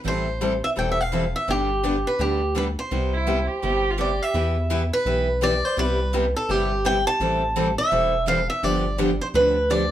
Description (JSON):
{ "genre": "acoustic string swing (jazz manouche)", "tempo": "168 BPM", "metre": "4/4", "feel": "swing 60% on 8ths", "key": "C major", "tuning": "A4 = 440 Hz", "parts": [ { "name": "picked steel-string acoustic guitar", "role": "accompaniment", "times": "0.0-9.8 s", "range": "C3 to B4", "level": "-30 LUFS", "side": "right 5 dB", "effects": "none" }, { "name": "picked swing-style acoustic guitar", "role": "melody", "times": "0.1-9.9 s", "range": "G4 to A5", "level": "-23 LUFS", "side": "right 1 dB", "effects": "none" }, { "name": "picked steel-string acoustic guitar", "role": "accompaniment", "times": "0.1-9.8 s", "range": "C3 to A4", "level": "-27 LUFS", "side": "left 4 dB", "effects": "none" }, { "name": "rubbery square bass", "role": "bass", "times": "0.1-9.9 s", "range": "E1 to E2", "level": "-27 LUFS", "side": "equal", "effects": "none" }, { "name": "dark violin", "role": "second line", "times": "3.1-4.3 s", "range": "E4 to G4", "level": "-26 LUFS", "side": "right 3 dB", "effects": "none" } ], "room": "wet studio reverb, RT60 0.5 s", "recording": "band playing live in one room", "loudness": "-20 LUFS", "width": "side -11 dB against mid", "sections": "0.0-4.3 A section; 4.3-9.9 B section", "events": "none", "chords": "0.1 Am7; 1.5 G; 2.9 Cmaj7; 4.3 Em; 5.8 Cmaj7; 7.2 Am7; 8.6 G7" }